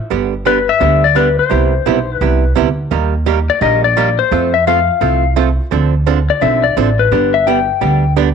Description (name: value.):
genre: country, western swing.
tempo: 171 BPM.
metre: 4/4.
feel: swing 64% on 8ths.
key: unclear.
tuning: A4 = 438 Hz.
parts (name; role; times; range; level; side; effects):
archtop guitar, miked and amplified; accompaniment; 0.1-8.3 s; C3 to A4; -17 LUFS; right 14 dB; none.
upright bass; bass; 0.1-8.3 s; G1 to F2; -16 LUFS; right 1 dB; none.
clean lap steel guitar; melody; 0.5-8.1 s; B4 to G5; -14 LUFS; left 9 dB; none.
room: moderate spring reverb, RT60 1.2 s, small room reverb.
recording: 1960s-style stereo with parts hard left and right.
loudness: -11 LUFS.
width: side -6 dB against mid.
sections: 0.0-2.9 A section; 2.9-8.3 B section.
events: none.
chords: 0.1 G; 1.5 Cmaj7; 2.9 Eb; 4.3 F; 5.7 Dm7; 7.1 G.